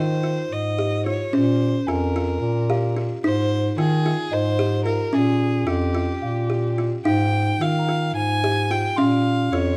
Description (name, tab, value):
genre	contemporary instrumental, chamber music in an uneven meter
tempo	220 BPM (eighths)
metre	7/8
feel	straight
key	Bb dorian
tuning	A4 = 440 Hz
part	warm violin	melody	0.0-9.8 s	G4 to Ab5	-29 LUFS	equal	none
part	buzzing kalimba	arpeggios	0.0-9.7 s	Db4 to G4	-26 LUFS	equal	none
part	mellow bass clarinet	bass	0.0-9.8 s	F2 to Eb3	-25 LUFS	equal	none
part	small celesta	texture	0.0-9.6 s	Eb5 to C6	-36 LUFS	equal	none
room	light reverb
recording	close, detailed microphones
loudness	-22 LUFS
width	mono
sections	0.0-9.8 A section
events	none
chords	0.0 Ab6; 1.3 Bbm7; 3.2 Ab6; 5.1 Bbm7; 7.1 Ab5; 9.0 Bbm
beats	0.23 0.51 0.78 1.06 | 1.33 1.60 1.88 2.15 2.42 2.69 2.97 | 3.24 3.51 3.78 4.04 4.32 4.58 4.86 | 5.13 5.40 5.67 5.95 6.22 6.50 6.78 | 7.05 7.33 7.61 7.88 8.16 8.43 8.70 | 8.97 9.25 9.52